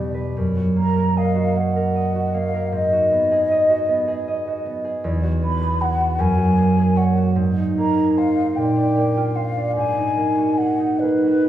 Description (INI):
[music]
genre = classical, impressionist duo for flute and harp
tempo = 51 BPM (dotted quarters)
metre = 6/8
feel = uneven beats, rubato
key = unclear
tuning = A4 = 441 Hz
[part]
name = concert harp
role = accompaniment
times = 0.0-11.5 s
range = E2 to F#5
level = -19 LUFS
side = right 1 dB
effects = none
[part]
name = mellow hollow concert flute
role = melody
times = 0.8-11.5 s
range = B4 to B5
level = -22 LUFS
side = left 1 dB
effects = none
[sound]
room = wet recital hall reverb, RT60 1.8 s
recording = heard from further back in the room, small room reverb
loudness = -17 LUFS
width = side -12 dB against mid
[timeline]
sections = 0.0-11.5 A section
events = none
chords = 0.4 F#6; 2.7 G#m7; 5.0 Eadd9; 6.2 F#add9; 7.4 G#add9; 8.6 A#add9; 9.8 G#m9